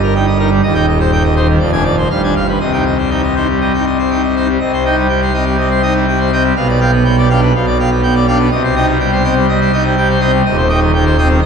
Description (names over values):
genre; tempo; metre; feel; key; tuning
classical, organ toccata; 123 BPM; 4/4; straight; C minor; A4 = 439 Hz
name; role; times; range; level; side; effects
pipe organ, full organ; solo; 0.0-11.5 s; Eb1 to Ab5; -11 LUFS; equal; none
room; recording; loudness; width
wet cathedral reverb, RT60 6.9 s; none; -11 LUFS; side -6 dB against mid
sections
0.0-4.6 A section; 4.6-11.5 B section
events
none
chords
0.0 Eb/G; 0.6 Cm/Eb; 1.6 Dm7b5/F; 2.1 G7b9; 2.6 Cm; 6.6 G7/B; 8.5 Cm; 10.5 Cm/Eb